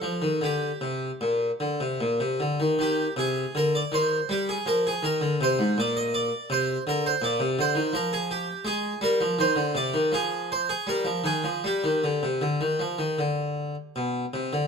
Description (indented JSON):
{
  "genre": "classical, baroque-style suite movement for harpsichord",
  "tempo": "81 BPM",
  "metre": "4/4",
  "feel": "uneven beats, rubato",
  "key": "C minor",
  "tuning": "A4 = 440 Hz",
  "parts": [
    { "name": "harpsichord", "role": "solo", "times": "0.0-14.7 s", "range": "Ab2 to Eb5", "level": "-24 LUFS", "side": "equal", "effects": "none" }
  ],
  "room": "light reverb",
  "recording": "none",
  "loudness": "-24 LUFS",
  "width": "side -5 dB against mid",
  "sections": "0.0-2.8 A section; 2.8-14.7 A section",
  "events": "none",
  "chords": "0.0 Gm; 2.8 Cm; 5.8 Bb69; 8.7 Ab; 10.1 Abmaj7sus2; 11.7 G5",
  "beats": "0.42 1.21 2.00 | 2.78 3.54 4.28 5.03 | 5.75 6.49 7.22 7.93 | 8.66 9.39 10.13 10.88 | 11.65 12.43 13.20 13.97"
}